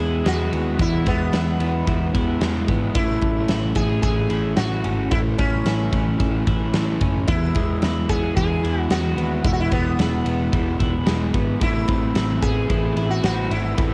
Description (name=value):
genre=jangly indie pop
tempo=111 BPM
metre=4/4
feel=straight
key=E major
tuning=A4 = 439 Hz
part: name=sitar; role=melody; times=0.0-13.9 s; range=B3 to G#4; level=-30 LUFS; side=equal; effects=cassette tape
part: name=crunchy overdriven guitar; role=accompaniment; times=0.0-13.9 s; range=A2 to B4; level=-29 LUFS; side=equal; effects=cassette tape
part: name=twelve-string electric guitar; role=arpeggios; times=0.0-13.9 s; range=E2 to E4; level=-29 LUFS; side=equal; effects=cassette tape
part: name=vintage muted picked electric bass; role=bass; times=0.0-13.9 s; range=E1 to E2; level=-27 LUFS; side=equal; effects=none
part: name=big rock drum kit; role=drums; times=0.3-13.9 s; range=kick drum, ride cymbal, snare drum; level=-26 LUFS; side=equal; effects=none
room=light reverb, small room ambience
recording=home recording on cassette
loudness=-21 LUFS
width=mono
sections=0.0-13.9 A section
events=none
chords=0.0 E; 3.0 A; 7.3 E; 11.6 Amadd9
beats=0.26 | 0.80 1.34 1.88 2.42 | 2.96 3.50 4.04 4.58 | 5.12 5.66 6.20 6.74 | 7.28 7.82 8.36 8.91 | 9.45 9.99 10.53 11.07 | 11.62 12.16 12.70 13.24 | 13.78